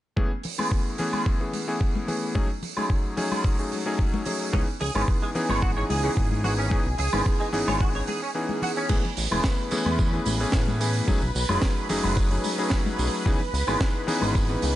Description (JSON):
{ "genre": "nu-disco, nu disco", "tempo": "110 BPM", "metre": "4/4", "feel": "straight", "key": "unclear", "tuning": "A4 = 439 Hz", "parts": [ { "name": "warm electric grand piano", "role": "accompaniment", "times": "0.2-14.7 s", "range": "E3 to G#4", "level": "-28 LUFS", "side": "left 1 dB", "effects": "vintage 12-bit sampler grit, low-pass filter, tape echo" }, { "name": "electronic kick drum", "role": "drums", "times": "0.2-14.5 s", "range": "none", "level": "-24 LUFS", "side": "equal", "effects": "overdrive" }, { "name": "congas", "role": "percussion", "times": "0.2-14.7 s", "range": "none", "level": "-34 LUFS", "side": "left 3 dB", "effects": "none" }, { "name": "tight funk drum kit", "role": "drums", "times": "0.4-14.7 s", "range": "crash cymbal, hi-hat, snare drum, tambourine, woodblock", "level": "-31 LUFS", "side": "right 3 dB", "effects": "none" }, { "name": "lush unison pad", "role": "sustained chords", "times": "5.3-14.8 s", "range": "G#4 to B5", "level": "-33 LUFS", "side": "right 1 dB", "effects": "chorus, phaser, sidechain pumping" }, { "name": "direct-recorded clean electric guitar", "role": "riff", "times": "4.5-8.9 s", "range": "G#3 to C#5", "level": "-32 LUFS", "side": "right 2 dB", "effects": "ensemble chorus, tape echo" }, { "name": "fat analog bass", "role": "bass", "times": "4.5-14.8 s", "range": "E1 to A2", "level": "-27 LUFS", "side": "equal", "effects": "sidechain pumping" } ], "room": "studio ambience", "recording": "nothing above 10.9 kHz", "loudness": "-22 LUFS", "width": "side -14 dB against mid", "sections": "0.2-8.9 A section; 8.9-14.8 B section", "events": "kick drops out 8.4-8.9", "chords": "0.2 Amaj9; 2.4 F#m69; 4.5 C#m9; 8.9 Amaj9; 11.1 B13; 13.3 C#m9" }